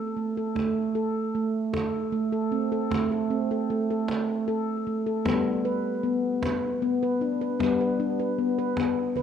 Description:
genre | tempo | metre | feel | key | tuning
world meditative, meditative tuned percussion | 77 BPM | 3/4 | straight | unclear | A4 = 440 Hz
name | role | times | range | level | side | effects
handpan | arpeggios | 0.0-9.2 s | G3 to B4 | -24 LUFS | equal | tape echo
cajon | percussion | 0.6-9.2 s | none | -34 LUFS | right 2 dB | none
room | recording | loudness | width
wet lush hall reverb, RT60 2.3 s | rough home demo mix, cassette tape | -24 LUFS | side -8 dB against mid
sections
0.6-9.2 A section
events
none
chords
0.0 N.C.; 5.3 G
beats
| 0.56 1.35 2.13 | 2.91 3.69 4.47 | 5.26 6.04 6.82 | 7.60 8.38 9.16

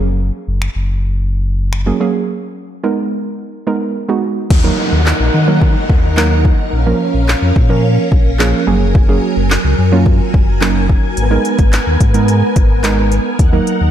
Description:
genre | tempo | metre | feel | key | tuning
dance-pop | 108 BPM | 4/4 | straight | Eb minor | A4 = 439 Hz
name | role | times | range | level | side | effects
soft round pluck | accompaniment | 0.0-13.9 s | F3 to Bb4 | -17 LUFS | right 4 dB | chorus, sidechain pumping
sub bass with octave | bass | 0.0-13.9 s | Gb1 to Eb3 | -14 LUFS | left 1 dB | sidechain pumping
deep house drum kit | drums | 0.6-13.8 s | crash cymbal, finger snaps, handclaps, hi-hat, kick drum, snare drum | -14 LUFS | equal | none
string machine, violins | sustained chords | 4.5-13.9 s | Gb3 to Ab5 | -19 LUFS | equal | ensemble chorus, sidechain pumping
downlifter | sound effects | 4.5-8.9 s | none | -24 LUFS | equal | none
room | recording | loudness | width
light reverb, digital ambience | dark, warm production | -11 LUFS | side -10 dB against mid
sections
0.0-4.5 A section; 4.5-13.9 B section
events
break 2.3-4.5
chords
0.0 Gbadd9; 2.3 Abmadd9; 4.5 Ebm; 6.7 Bbm; 8.7 Gbadd9; 11.2 Abmadd9; 13.4 Ebm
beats
| 0.06 0.62 1.17 1.73 | 2.28 2.84 3.39 3.95 | 4.50 5.06 5.62 6.17 | 6.73 7.28 7.84 8.39 | 8.95 9.51 10.06 10.62 | 11.17 11.73 12.28 12.84 | 13.39

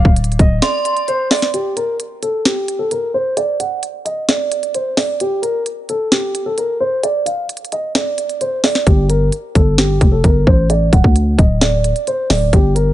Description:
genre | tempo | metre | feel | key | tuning
hip hop, trap | 131 BPM | 4/4 | half-time | unclear | A4 = 438 Hz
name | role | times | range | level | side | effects
dark grand piano | melody | 0.0-12.9 s | G4 to F#5 | -18 LUFS | right 1 dB | low-pass filter, ping-pong delay
growling 808-style bass | bass | 0.0-0.6, 8.9-12.9 s | D1 to D2 | -14 LUFS | equal | none
trap drum kit | drums | 0.1-12.9 s | hi-hat, kick drum, snare drum | -14 LUFS | equal | none
metallic FM bell | second line | 0.6-1.1 s | C6 | -22 LUFS | right 1 dB | chorus, ping-pong delay
room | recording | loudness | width
little or no reverb | nothing above 10.5 kHz | -13 LUFS | side -14 dB against mid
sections
0.0-1.5 A section; 1.5-12.9 B section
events
break 0.6-1.5, 1.5-8.9; filter sweep on grand piano 1.5-12.9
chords
0.0 D7(no3); 1.5 N.C.; 8.9 Fadd9; 10.7 D5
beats
0.17 0.62 1.08 | 1.54 2.00 2.46 2.91 | 3.37 3.83 4.29 4.75 | 5.20 5.66 6.12 6.58 | 7.04 7.49 7.95 8.41 | 8.87 9.32 9.78 10.24 | 10.70 11.16 11.62 12.07 | 12.53

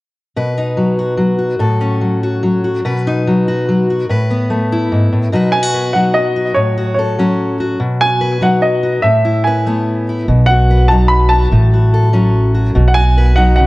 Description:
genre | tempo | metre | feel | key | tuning
folk | 145 BPM | 3/4 | straight | B mixolydian | A4 = 439 Hz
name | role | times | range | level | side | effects
fingerpicked steel-string acoustic guitar | accompaniment | 0.4-13.7 s | G#2 to B4 | -14 LUFS | left 1 dB | none
clear upright piano | melody | 5.5-13.7 s | C#5 to B5 | -15 LUFS | equal | tape echo
upright bass | bass | 10.3-13.7 s | A1 to B1 | -11 LUFS | equal | none
room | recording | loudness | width
light reverb, studio reverb | dark, warm production, nothing above 11.0 kHz | -11 LUFS | side -19 dB against mid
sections
0.4-5.3 A section; 5.3-13.7 B section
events
none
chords
0.4 B; 1.6 F#m/A; 2.8 B; 4.1 Asus2; 5.3 B; 6.6 F#m/A; 7.8 B; 9.0 Asus2; 10.3 B; 11.5 F#m/A; 12.8 B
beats
| 0.37 0.78 1.20 | 1.61 2.02 2.43 | 2.84 3.26 3.67 | 4.08 4.49 4.91 | 5.32 5.73 6.14 | 6.56 6.97 7.38 | 7.80 8.21 8.62 | 9.04 9.45 9.86 | 10.28 10.69 11.10 | 11.51 11.93 12.34 | 12.75 13.17 13.58

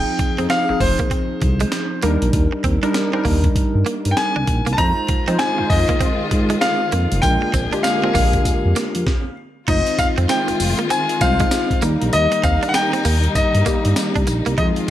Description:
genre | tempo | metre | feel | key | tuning
R&B, new jack swing | 98 BPM | 4/4 | swing 62% on 16ths | F dorian | A4 = 442 Hz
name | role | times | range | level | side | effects
clear grand piano | melody | 0.0-14.6 s | C5 to Bb5 | -21 LUFS | left 2 dB | none
warm analog keys | accompaniment | 0.0-14.9 s | F3 to C5 | -23 LUFS | left 1 dB | chorus
smooth gliding synth bass | bass | 0.0-14.7 s | F1 to F3 | -19 LUFS | equal | none
direct-recorded clean electric guitar | riff | 0.2-14.7 s | Ab3 to Eb4 | -26 LUFS | right 5 dB | wide subtle chorus
breakbeat sampler-style drum kit | drums | 0.2-14.9 s | crash cymbal, hi-hat, kick drum, snare drum, tambourine | -22 LUFS | equal | none
warm studio string section | sustained chords | 4.8-14.9 s | D3 to Ab4 | -26 LUFS | left 2 dB | none
room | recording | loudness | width
digital ambience | none | -16 LUFS | side -12 dB against mid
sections
0.0-9.7 A section; 9.7-14.9 B section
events
stop 9.1-9.7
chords
0.0 Fm7; 2.0 Ebmaj7; 4.8 Fm7; 7.2 Bb7; 9.7 Fm7; 11.8 Eb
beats
0.49 1.11 1.72 | 2.33 2.94 3.56 4.17 | 4.78 5.39 6.01 6.62 | 7.23 7.84 8.46 9.07 | 9.68 10.29 10.90 11.52 | 12.13 12.74 13.35 13.96 | 14.58

